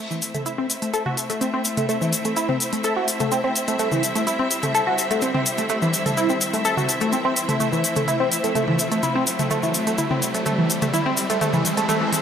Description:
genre	melodic techno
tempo	126 BPM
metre	4/4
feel	straight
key	A minor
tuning	A4 = 440 Hz
part	clear studio string section	sustained chords	0.0-12.2 s	G3 to E5	-26 LUFS	left 1 dB	none
part	tight sequenced synth	arpeggios	0.0-12.1 s	E3 to A4	-22 LUFS	right 1 dB	chorus, phaser, digital delay
part	riser	sound effects	0.0-12.2 s	none	-32 LUFS	equal	none
part	tube shaker	percussion	0.1-12.2 s	none	-28 LUFS	left 4 dB	none
part	techno drum kit	drums	0.2-12.2 s	hi-hat, toms	-27 LUFS	left 1 dB	none
room	moderate digital room reverb, RT60 1.3 s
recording	none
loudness	-19 LUFS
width	side -8 dB against mid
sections	0.0-12.2 A section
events	build-up 0.0-12.2; riser 0.0-12.2; drum fill 7.6-12.2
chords	0.0 Am; 3.8 C; 7.6 Am; 11.4 C

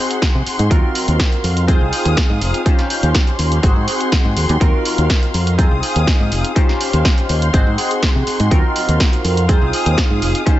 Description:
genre	filtered disco house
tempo	123 BPM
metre	4/4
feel	straight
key	Eb dorian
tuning	A4 = 441 Hz
part	funky polysynth comp	accompaniment	0.0-10.6 s	C4 to C5	-21 LUFS	equal	chorus, phaser, cassette tape, sidechain pumping
part	warm studio string section	sustained chords	0.0-10.6 s	Gb3 to Eb6	-24 LUFS	left 1 dB	sidechain pumping
part	punchy analog drum machine	drums	0.1-10.6 s	hi-hat, snare drum	-22 LUFS	equal	sidechain pumping on hats
part	electronic kick drum	drums	0.2-10.6 s	none	-15 LUFS	equal	overdrive
part	fingered electric bass	bass	0.3-10.3 s	F1 to C3	-17 LUFS	equal	tube saturation, sidechain pumping
room	little or no reverb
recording	nothing above 8.0 kHz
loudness	-13 LUFS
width	side -14 dB against mid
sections	0.0-10.6 A section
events	none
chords	0.0 Ab7; 0.7 Ebm69; 1.7 Fm7; 2.7 Eb13; 3.6 Ab7; 4.6 Ebm69; 5.6 Fm7; 6.6 Eb13; 7.5 Ab7; 8.5 Ebm69; 9.5 Fm7

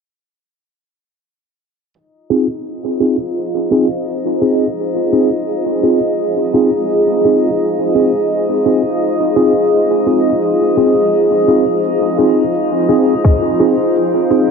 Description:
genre	ambient dub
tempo	85 BPM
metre	4/4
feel	swing 54% on 16ths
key	F minor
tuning	A4 = 440 Hz
part	granular cloud pad	sustained chords	3.2-14.5 s	F4 to F5	-16 LUFS	equal	built-in reverb
part	cabasa	drums	2.0-14.5 s	none	-61 LUFS	right 3 dB	none
part	drifting glass-harmonics texture	texture	2.9-14.5 s	Eb4 to G5	-20 LUFS	left 1 dB	chorus, built-in reverb
part	mellow tine electric piano	stabs	2.3-14.5 s	C4 to Ab4	-15 LUFS	right 1 dB	medium stereo tremolo, low-pass filter, dub echo
part	electronic kick drum	drums	13.2-13.4 s	none	-12 LUFS	equal	overdrive
room	moderate huge ambient reverb, RT60 3.8 s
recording	low-pass filter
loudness	-12 LUFS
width	side -5 dB against mid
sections	2.0-14.5 A section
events	filter sweep on tine electric piano 2.0-14.5; filter sweep 2.0-14.5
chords	2.0 Fm7

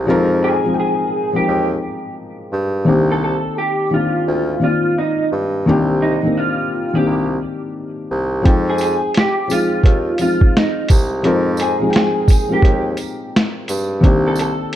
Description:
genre	lo-fi hip hop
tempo	86 BPM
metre	4/4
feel	swing 65% on 16ths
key	F minor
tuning	A4 = 440 Hz
part	felt-muted upright piano	accompaniment	0.0-14.8 s	Eb3 to G5	-19 LUFS	left 2 dB	cassette tape
part	warm bassoon	bass	0.0-14.6 s	C2 to G2	-20 LUFS	right 1 dB	none
part	electric guitar through a small old amp	melody	0.4-14.7 s	Eb4 to A4	-20 LUFS	right 1 dB	ensemble chorus, analog delay
part	lo-fi sampler-style drum kit	drums	8.5-14.8 s	hi-hat, kick drum, snare drum	-14 LUFS	equal	vintage 12-bit sampler grit
part	tambourine	percussion	8.8-14.6 s	none	-33 LUFS	right 7 dB	none
room	light reverb, small room ambience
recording	dark, warm production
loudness	-14 LUFS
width	side -11 dB against mid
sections	0.0-14.8 A section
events	none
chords	0.0 Fm9; 2.9 Cm9; 8.5 Fm9; 14.0 Cm9

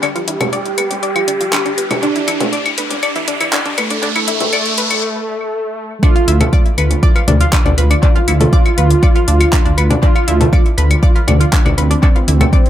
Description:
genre	melodic techno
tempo	120 BPM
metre	4/4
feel	straight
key	D dorian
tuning	A4 = 440 Hz
part	analog synth brass	melody	0.0-12.7 s	A3 to G4	-20 LUFS	right 2 dB	chorus, sidechain pumping, tape echo
part	analog pluck	arpeggios	0.0-12.6 s	A3 to D6	-20 LUFS	left 1 dB	chorus, sidechain pumping, analog delay
part	deep house drum kit	drums	0.0-12.7 s	claves, congas, handclaps, hi-hat	-19 LUFS	left 2 dB	sidechain pumping on hats, sidechain pumping on perc, analog delay
part	riser	sound effects	0.0-5.0 s	none	-21 LUFS	right 1 dB	none
part	electronic kick drum	drums	6.0-12.6 s	none	-11 LUFS	equal	none
part	dark detuned saw bass	bass	6.3-12.4 s	D2	-13 LUFS	equal	sidechain pumping
room	light reverb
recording	echo-heavy mix, high-pass filter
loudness	-11 LUFS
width	side -11 dB against mid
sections	0.0-6.0 A section; 6.0-12.7 B section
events	build-up 0.0-6.0; riser 0.0-5.0; filter sweep on synth arpeggio sound 0.0-6.0; filter sweep on analog polysynth 0.0-6.0; break 5.0-6.0; drop 6.0-12.7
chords	0.0 Dm; 2.0 E5; 6.0 Dm

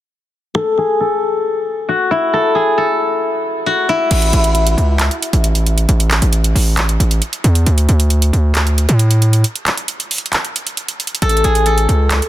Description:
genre	hip hop, trap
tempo	135 BPM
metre	4/4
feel	half-time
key	A major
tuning	A4 = 440 Hz
part	steel-string zither	melody	0.5-6.5, 11.2-12.3 s	E4 to A4	-15 LUFS	left 2 dB	low-pass filter
part	distorted 808-style bass	bass	4.1-12.2 s	A1 to A2	-12 LUFS	equal	distortion
part	trap drum kit	drums	4.1-12.3 s	crash cymbal, handclaps, hi-hat	-19 LUFS	right 1 dB	none
room	digital ambience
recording	dense, heavily limited modern master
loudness	-12 LUFS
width	side -13 dB against mid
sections	0.6-4.1 A section; 4.1-12.3 B section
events	filter sweep on guzheng 0.6-4.1; break 9.4-11.2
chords	0.6 N.C.; 4.1 A5; 7.7 D5; 11.2 A

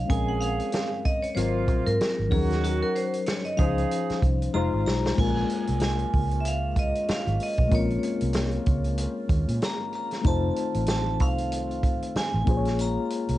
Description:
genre	lush 1970s-style soul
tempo	95 BPM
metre	4/4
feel	swing 58% on 16ths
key	Bb minor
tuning	A4 = 440 Hz
part	vibraphone with hard mallets	melody	0.0-13.4 s	Gb4 to Bb5	-31 LUFS	right 1 dB	cassette tape, tape echo
part	reed electric piano	accompaniment	0.0-13.4 s	F3 to Db5	-29 LUFS	left 5 dB	fast tremolo, cassette tape
part	vintage muted fingered electric bass	bass	0.0-13.4 s	F1 to Bb2	-27 LUFS	right 1 dB	none
part	mellow horn section	stabs	0.1-4.9 s	C3 to Ab4	-33 LUFS	right 7 dB	cassette tape
part	vintage drum kit	drums	0.1-13.4 s	crash cymbal, hi-hat, kick drum, snare drum	-27 LUFS	right 1 dB	cassette tape
part	tonewheel organ	sustained chords	5.2-13.4 s	Eb3 to F4	-37 LUFS	right 1 dB	slow rotary speaker, cassette tape
room	light reverb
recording	home recording on cassette, nothing above 10.7 kHz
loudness	-23 LUFS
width	side -15 dB against mid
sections	0.0-5.2 A section; 5.2-13.4 B section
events	vibraphone solo 0.0-5.2; drum fill 4.5-5.2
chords	0.1 Bbm9; 1.4 Ab13; 2.3 Ebm7; 3.6 Dbmaj9; 4.5 Fm7; 5.2 Bbm7; 10.3 F7; 12.5 Bbm7

